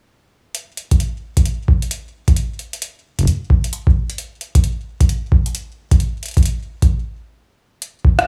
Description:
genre	IDM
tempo	132 BPM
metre	4/4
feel	swing 62% on 16ths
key	none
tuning	none
part	booming analog drum machine	drums	0.5-8.3 s	hi-hat, rim click	-25 LUFS	equal	none
part	electronic kick drum	drums	0.9-8.2 s	none	-16 LUFS	equal	none
room	digital ambience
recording	small room ambience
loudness	-18 LUFS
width	mono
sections	0.5-7.8 A section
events	stop 6.9-7.8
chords	none

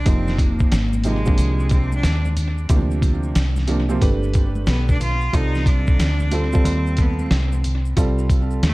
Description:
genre	hip hop, jazz-hop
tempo	91 BPM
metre	4/4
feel	swing 64% on 16ths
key	C dorian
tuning	A4 = 439 Hz
part	bright cello	melody	0.0-8.7 s	Ab3 to F4	-27 LUFS	equal	tape echo
part	deep dub fingered electric bass	bass	0.0-8.7 s	F1 to Eb2	-20 LUFS	equal	none
part	clear upright piano	accompaniment	0.1-8.6 s	C3 to B4	-25 LUFS	right 2 dB	tape echo
part	dusty soul sampler-style drum kit	drums	0.1-8.7 s	hi-hat, kick drum, snare drum	-20 LUFS	equal	vintage 12-bit sampler grit
part	maracas and congas	percussion	0.1-8.7 s	none	-35 LUFS	left 1 dB	tape echo
room	little or no reverb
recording	echo-heavy mix, vinyl crackle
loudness	-17 LUFS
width	side -21 dB against mid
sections	0.0-8.7 A section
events	cello solo 0.0-8.7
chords	0.1 Fm7; 2.7 C9sus4; 4.0 G; 5.3 Cm69

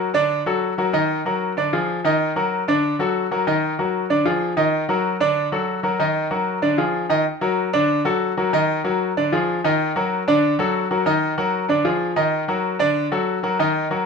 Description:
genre	latin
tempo	190 BPM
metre	4/4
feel	straight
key	unclear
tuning	A4 = 440 Hz
part	clear concert grand piano	solo	0.0-14.1 s	D3 to Eb5	-18 LUFS	equal	none
room	moderate large studio reverb, RT60 0.9 s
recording	minimal, uncompressed stereo recording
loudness	-18 LUFS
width	side -5 dB against mid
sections	0.0-7.3 A section; 7.3-14.1 A section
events	none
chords	0.3 D; 0.9 Ebm; 1.6 Ddim; 2.2 Ebm; 2.8 D; 3.5 Ebm; 4.1 Ddim; 4.7 Ebm; 5.4 D; 6.0 Ebm; 6.6 Ddim; 7.3 Daug; 7.9 D; 8.5 Ebm; 9.2 Ddim; 9.8 Ebm; 10.4 D; 11.1 Ebm; 11.7 Ddim; 12.3 Ebm; 13.0 D

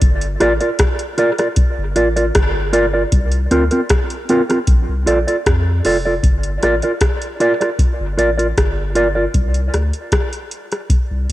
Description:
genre	dub reggae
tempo	77 BPM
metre	4/4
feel	straight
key	G minor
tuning	A4 = 440 Hz
part	warm sub bass	bass	0.0-11.3 s	F1 to F2	-19 LUFS	equal	none
part	soft vintage rhythm box	drums	0.0-11.3 s	hi-hat, kick drum, rim click	-16 LUFS	equal	none
part	mellow electric guitar	accompaniment	0.4-9.2 s	C4 to D5	-17 LUFS	right 1 dB	cassette tape, dub echo
room	light reverb, digital ambience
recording	home recording on cassette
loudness	-14 LUFS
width	side -15 dB against mid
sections	0.0-6.2 A section; 6.2-11.3 B section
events	break 9.3-11.3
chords	0.0 Gm7; 3.1 C7sus4; 4.7 Bbmaj7; 6.2 Gm7; 9.3 Csus2

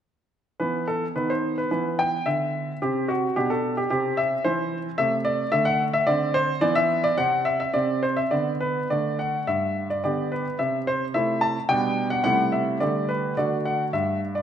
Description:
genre	classical-period piano sonatina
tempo	108 BPM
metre	2/4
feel	straight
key	E minor, G major from 5.0 s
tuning	A4 = 444 Hz
part	clear grand piano	solo	0.6-14.4 s	G2 to A5	-22 LUFS	equal	none
room	moderate recital hall reverb, RT60 1.7 s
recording	none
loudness	-22 LUFS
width	side -9 dB against mid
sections	0.6-9.5 A section; 9.5-14.4 B section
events	none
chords	0.6 E5; 1.2 B/D#; 1.7 E5; 2.8 N.C.; 3.4 Bm7; 3.9 C; 5.0 Am/C; 5.5 D; 6.1 Csus2/D; 6.6 E5; 7.2 N.C.; 8.3 Bm/D; 8.9 D; 9.5 G; 10.6 Am/C; 11.7 G/B; 12.2 Am7/C; 12.8 Dsus4; 13.4 D

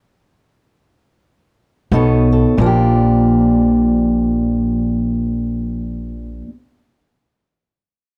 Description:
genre	acoustic country blues, solo or duo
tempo	free time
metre	none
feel	none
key	unclear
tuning	A4 = 439 Hz
part	fingerpicked steel-string acoustic guitar	melody	1.9-6.5 s	Bb2 to C#5	-17 LUFS	equal	none
part	upright bass	bass	1.9-6.4 s	Bb1 to B1	-22 LUFS	equal	none
room	moderate booth ambience, RT60 0.2 s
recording	dark, warm production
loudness	-15 LUFS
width	mono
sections	0.0-2.6 A section; 2.6-8.0 B section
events	slowing down 0.0-2.6; stop 0.0-1.9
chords	0.0 N.C.; 1.9 B9; 2.6 Bb6

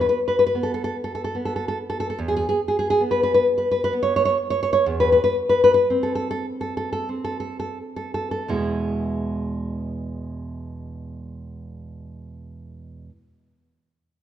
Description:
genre	romantic piece for solo classical guitar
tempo	40-77 BPM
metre	3/4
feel	rubato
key	E major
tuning	A4 = 438 Hz
part	nylon-string guitar	solo	0.0-13.1 s	E2 to C#5	-20 LUFS	equal	none
room	moderate recital hall reverb, RT60 1.7 s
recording	minimal, uncompressed stereo recording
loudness	-20 LUFS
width	side -10 dB against mid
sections	0.0-8.5 A section; 8.5-12.6 B section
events	slowing down 1.0-8.5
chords	0.0 N.C.; 4.8 Amadd9/E; 8.5 E

